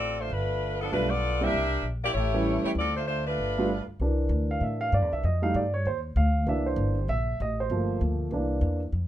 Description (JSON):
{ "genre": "jazz, big band swing", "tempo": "195 BPM", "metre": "4/4", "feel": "swing 61% on 8ths", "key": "C mixolydian", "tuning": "A4 = 440 Hz", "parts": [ { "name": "warm saxophone section", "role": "melody", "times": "0.0-3.8 s", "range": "F3 to E5", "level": "-28 LUFS", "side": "left 1 dB", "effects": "none" }, { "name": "upright bass", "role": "bass", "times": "0.0-9.1 s", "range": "G1 to A2", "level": "-28 LUFS", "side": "equal", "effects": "none" }, { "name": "warm grand piano", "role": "accompaniment", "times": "0.9-8.8 s", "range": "E3 to F5", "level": "-28 LUFS", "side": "right 2 dB", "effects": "none" } ], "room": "light reverb", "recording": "minimal, uncompressed stereo recording", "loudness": "-25 LUFS", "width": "side -12 dB against mid", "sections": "0.0-4.0 A section; 4.0-9.1 B section", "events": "grand piano solo 4.0-9.1", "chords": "0.3 G9; 1.5 C9; 2.1 A7; 2.8 Dm7; 3.4 G9; 4.0 C9; 5.2 F9; 6.5 C9; 7.7 Gm7; 8.3 C9" }